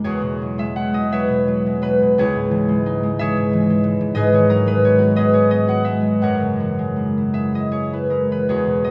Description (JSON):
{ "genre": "classical, solo harp piece", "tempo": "52-61 BPM (dotted quarters)", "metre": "6/8", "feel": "rubato", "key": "E lydian", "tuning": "A4 = 445 Hz", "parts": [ { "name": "concert harp", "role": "solo", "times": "0.0-8.9 s", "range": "C#2 to F#5", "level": "-18 LUFS", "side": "equal", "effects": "none" } ], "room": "wet cathedral reverb, RT60 5.2 s", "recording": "recorded in a church or concert hall", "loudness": "-18 LUFS", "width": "mono", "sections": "0.0-8.9 A section", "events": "none", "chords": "0.0 E69; 2.2 C#madd9; 4.2 G#m7; 6.2 F#9" }